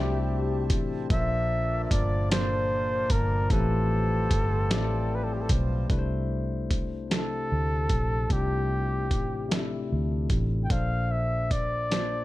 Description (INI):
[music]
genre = slow six-eight R&B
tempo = 50 BPM (dotted quarters)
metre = 6/8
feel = straight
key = unclear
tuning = A4 = 441 Hz
[part]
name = breathy flugelhorn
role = melody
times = 0.0-12.2 s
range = G4 to G5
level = -30 LUFS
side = equal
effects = slapback echo
[part]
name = barky tine electric piano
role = accompaniment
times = 0.0-12.2 s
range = A2 to A5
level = -33 LUFS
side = left 5 dB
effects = none
[part]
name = hand-pumped harmonium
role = sustained chords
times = 0.0-5.9 s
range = C3 to A4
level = -39 LUFS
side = right 1 dB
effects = none
[part]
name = vintage muted fingered electric bass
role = bass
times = 0.0-12.2 s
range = G1 to D2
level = -28 LUFS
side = equal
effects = none
[part]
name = dusty soul sampler-style drum kit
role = drums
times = 0.7-12.1 s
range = hi-hat, kick drum, snare drum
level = -27 LUFS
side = equal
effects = overdrive
[sound]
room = little or no reverb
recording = dark, warm production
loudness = -24 LUFS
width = side -16 dB against mid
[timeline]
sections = 0.0-5.9 A section; 5.9-12.2 B section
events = none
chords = 0.0 C69; 1.1 Bbmaj9; 3.5 Am9; 5.9 C69; 10.7 Bbmaj9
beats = | 1.10 2.30 | 3.50 4.70 | 5.90 7.10 | 8.30 9.50 | 10.70 11.90